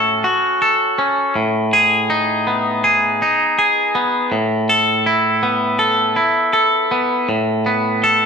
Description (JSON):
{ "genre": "rock", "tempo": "81 BPM", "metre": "4/4", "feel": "straight", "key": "A lydian", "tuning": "A4 = 440 Hz", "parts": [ { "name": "twangy electric guitar", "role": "solo", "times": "0.0-8.3 s", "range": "A2 to A4", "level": "-14 LUFS", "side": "equal", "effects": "none" } ], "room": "wet stone room reverb, RT60 1.3 s", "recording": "band playing live in one room", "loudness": "-14 LUFS", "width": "side -6 dB against mid", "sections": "0.0-7.3 A section", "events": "none", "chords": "0.0 F#m/A; 1.3 G#m/A; 4.3 E5/A; 7.3 Asus2", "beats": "0.60 | 1.35 2.09 2.84 3.58 | 4.32 5.07 5.81 6.55 | 7.29 8.03" }